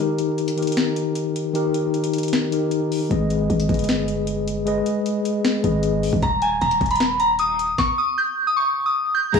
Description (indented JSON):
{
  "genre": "hip hop, trap",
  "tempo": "154 BPM",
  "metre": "4/4",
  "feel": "half-time",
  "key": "G# harmonic minor",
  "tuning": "A4 = 440 Hz",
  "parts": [
    { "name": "mellow tine electric piano", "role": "accompaniment", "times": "0.0-6.2, 9.3-9.4 s", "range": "D#3 to D#5", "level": "-21 LUFS", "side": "left 3 dB", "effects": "medium stereo tremolo, low-pass filter" },
    { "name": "trap drum kit", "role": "drums", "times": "0.2-9.4 s", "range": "crash cymbal, hi-hat, kick drum, snare drum", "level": "-26 LUFS", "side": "left 2 dB", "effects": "none" },
    { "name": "growling 808-style bass", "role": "bass", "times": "3.1-9.4 s", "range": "D#1 to G#1", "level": "-24 LUFS", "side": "equal", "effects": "none" },
    { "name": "soft synth bell", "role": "melody", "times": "6.2-9.4 s", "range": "G#4 to G6", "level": "-18 LUFS", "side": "equal", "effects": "chorus, low-pass filter" },
    { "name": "warm studio violin section", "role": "second line", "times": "9.3-9.4 s", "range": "A#5", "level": "-25 LUFS", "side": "equal", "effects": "none" }
  ],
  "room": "light reverb, digital ambience",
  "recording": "blown-out, overdriven recording, vinyl crackle, overdrive, small room ambience",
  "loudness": "-19 LUFS",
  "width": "side -5 dB against mid",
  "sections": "0.0-9.3 A section",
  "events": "break 0.0-3.1",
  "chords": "0.0 D#; 3.1 G#m; 6.2 N.C."
}